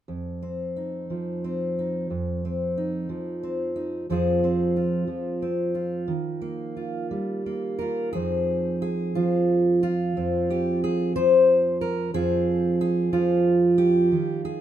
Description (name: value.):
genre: folk, solo fingerstyle acoustic guitar.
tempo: 60 BPM (dotted quarters).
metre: 6/8.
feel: rubato.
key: F minor.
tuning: A4 = 441 Hz.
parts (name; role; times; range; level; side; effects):
fingerpicked steel-string acoustic guitar; solo; 0.1-14.6 s; F2 to C5; -22 LUFS; equal; none.
room: moderate studio reverb, RT60 0.6 s.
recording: minimal, uncompressed stereo recording.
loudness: -22 LUFS.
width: side -11 dB against mid.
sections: 0.1-8.1 A section; 8.1-14.6 B section.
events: none.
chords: 0.1 F5; 4.1 Fm; 6.1 Ebadd9; 8.1 Fm7; 12.1 Fmadd9.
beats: | 0.08 1.10 | 2.11 3.10 | 4.09 5.08 | 6.08 7.11 | 8.14 9.16 | 10.17 11.16 | 12.14 13.13 | 14.12.